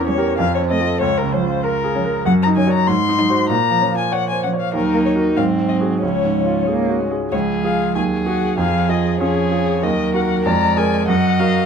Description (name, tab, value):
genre	quick classical-period movement for piano quartet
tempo	96 BPM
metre	2/4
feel	straight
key	Db major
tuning	A4 = 440 Hz
part	muted violin	melody	0.0-11.7 s	Bb4 to C6	-21 LUFS	left 8 dB	none
part	clear grand piano	accompaniment	0.0-11.7 s	Db2 to Db5	-18 LUFS	right 2 dB	none
part	muted cello	second line	0.1-11.7 s	Eb3 to Bb3	-23 LUFS	right 6 dB	none
part	muted violin	second line	0.1-11.7 s	C4 to Eb5	-24 LUFS	left 3 dB	none
room	light reverb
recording	minimal, uncompressed stereo recording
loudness	-15 LUFS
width	side -6 dB against mid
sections	0.0-7.3 A section; 7.3-11.7 B section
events	none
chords	0.4 F; 1.0 Bbm/Db; 2.3 Ebm7/Gb; 2.9 Ab7; 3.5 Bbm; 4.7 Ebm; 5.4 Ab7; 6.0 Db; 8.0 Ab5/Eb; 8.6 Db/F; 9.8 Ebm; 10.5 Bb7/F; 11.1 Ebm/Gb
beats	0.39 | 1.02 1.65 | 2.26 2.88 | 3.50 4.12 | 4.75 5.37 | 6.02 6.68 | 7.32 7.96 | 8.59 9.22 | 9.84 10.46 | 11.09